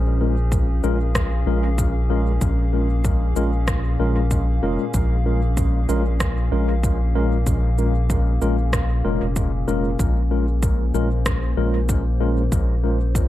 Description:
ambient dub; 95 BPM; 4/4; swing 54% on 16ths; Bb minor; A4 = 440 Hz
warbly tape-like pad; sustained chords; 0.0-13.3 s; Bb2 to F5; -28 LUFS; left 2 dB; chorus, built-in reverb
round analog bass; bass; 0.0-13.3 s; F1 to Bb1; -20 LUFS; equal
mellow tine electric piano; stabs; 0.2-13.0 s; Ab3 to Bb4; -26 LUFS; left 2 dB; medium stereo tremolo, dub echo
electronic kick drum; drums; 0.5-13.3 s; -23 LUFS; equal
electronic shaker and rim click; drums; 0.5-13.3 s; -29 LUFS; right 1 dB; dub echo
light reverb; echo-heavy mix; -18 LUFS; side -14 dB against mid
0.0-13.3 A section
0.0 Bbm7
0.52 1.16 1.79 | 2.42 3.05 3.68 4.31 | 4.94 5.58 6.21 6.84 | 7.47 8.10 8.73 9.37 | 10.00 10.63 11.26 11.89 | 12.52 13.15

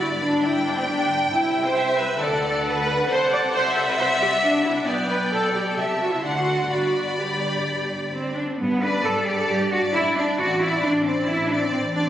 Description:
quick classical-period movement for string orchestra; 135 BPM; 4/4; rubato; G major; A4 = 439 Hz
rich symphonic violin section; melody; 0.0-12.1 s; A4 to G5; -25 LUFS; left 1 dB
rich chamber violin section; second line; 0.0-12.1 s; D5 to C6; -29 LUFS; left 2 dB
warm symphonic viola section; accompaniment; 0.0-12.1 s; B3 to D5; -24 LUFS; equal
rich symphonic cello section; bass; 0.0-12.1 s; G2 to B4; -26 LUFS; equal
warm symphonic double bass section; bass; 0.0-12.1 s; G1 to G2; -31 LUFS; equal
wet scoring stage reverb, RT60 1.6 s; recorded on a phone in the room, studio reverb; -20 LUFS; side -11 dB against mid
0.0-8.6 A section; 8.6-12.1 B section
0.0 G; 1.3 C; 2.2 D; 3.1 D7/C; 4.9 G/B; 5.8 Am7/C; 6.2 D7; 6.7 G; 10.4 D7/A
0.00 0.44 0.88 | 1.32 1.76 2.20 2.65 | 3.09 3.54 3.98 4.43 | 4.87 5.32 5.78 6.24 | 6.71 7.19 7.66 8.13 | 8.60 9.05 9.49 9.94 | 10.38 10.83 11.28 11.72

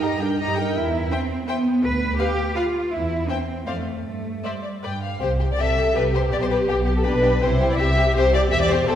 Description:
quick classical-period movement for string orchestra; 164 BPM; 3/4; rubato; C major; A4 = 442 Hz
warm studio violin section; melody; 0.0-9.0 s; G4 to Bb5; -31 LUFS; left 5 dB
warm studio violin section; second line; 0.0-9.0 s; G4 to G5; -23 LUFS; left 2 dB
warm studio viola section; accompaniment; 0.0-9.0 s; D4 to C5; -28 LUFS; equal
warm studio cello section; bass; 0.0-9.0 s; E2 to B4; -25 LUFS; right 1 dB
warm studio double bass section; bass; 0.0-9.0 s; E1 to G2; -25 LUFS; right 1 dB
wet scoring stage reverb, RT60 1.6 s; heard from further back in the room; -19 LUFS; side -10 dB against mid
0.0-5.2 A section; 5.2-9.0 B section
0.0 Eb/G; 0.8 C/E; 1.8 Bdim/D; 2.9 C/E; 3.7 Dm/F; 4.1 G5; 5.2 C; 6.3 G/B; 7.4 C
0.04 0.40 | 0.76 1.12 1.48 | 1.84 2.20 2.56 | 2.93 3.30 3.67 | 4.05 4.45 4.83 | 5.21 5.58 5.95 | 6.32 6.69 7.06 | 7.42 7.79 8.15 | 8.52 8.88

